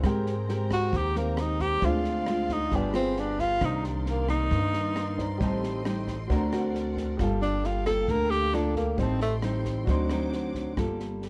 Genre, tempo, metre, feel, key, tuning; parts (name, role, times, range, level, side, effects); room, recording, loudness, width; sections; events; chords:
bossa nova; 134 BPM; 4/4; straight; G minor; A4 = 440 Hz
nylon-string guitar; accompaniment; 0.0-11.3 s; G2 to Bb4; -34 LUFS; equal
warm grand piano; accompaniment; 0.0-10.8 s; C4 to C6; -41 LUFS; equal
warm symphonic string section; sustained chords; 0.0-10.8 s; G#3 to D6; -46 LUFS; equal
upright bass; bass; 0.0-11.3 s; G1 to Ab2; -32 LUFS; equal
compact cocktail drum kit; drums; 0.0-11.3 s; kick drum, rim click, snare drum; -37 LUFS; equal
breathy tenor saxophone; melody; 0.7-9.4 s; G3 to Bb4; -30 LUFS; equal
light reverb; -27 LUFS; mono
0.0-10.8 A section
tenor saxophone solo 0.0-10.8
0.0 Abmaj9; 1.8 Dm7b5; 2.7 G7b9; 3.6 Cm9; 5.4 Am7b5; 6.3 D7b13; 7.2 Gm9; 9.0 Am7b5; 9.9 D7b9; 10.8 Gm9